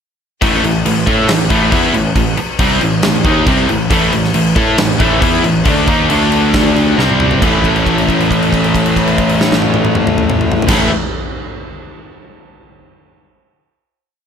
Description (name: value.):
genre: hard rock.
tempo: 137 BPM.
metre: 4/4.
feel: straight.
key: A minor.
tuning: A4 = 441 Hz.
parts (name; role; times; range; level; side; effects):
cranked stack guitar; riff; 0.4-10.9 s; A2 to A4; -17 LUFS; left 10 dB; overdrive.
sludgy distorted guitar; riff; 0.4-10.9 s; A2 to A4; -18 LUFS; right 9 dB; overdrive.
tight distorted guitar; riff; 0.4-10.9 s; A2 to A4; -18 LUFS; equal; distortion.
fuzz picked electric bass; bass; 0.4-10.9 s; A1 to A2; -18 LUFS; equal; overdrive.
huge arena drum kit; drums; 0.4-10.8 s; crash cymbal, kick drum, snare drum, toms; -16 LUFS; equal; none.
room: studio ambience.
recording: none.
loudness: -10 LUFS.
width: side -7 dB against mid.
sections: 0.4-7.4 riff; 7.4-10.9 final chord.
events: drum fill 7.0-7.4; held note 7.4-10.7.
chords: 0.4 Am; 6.1 D5; 7.0 C5; 7.4 A.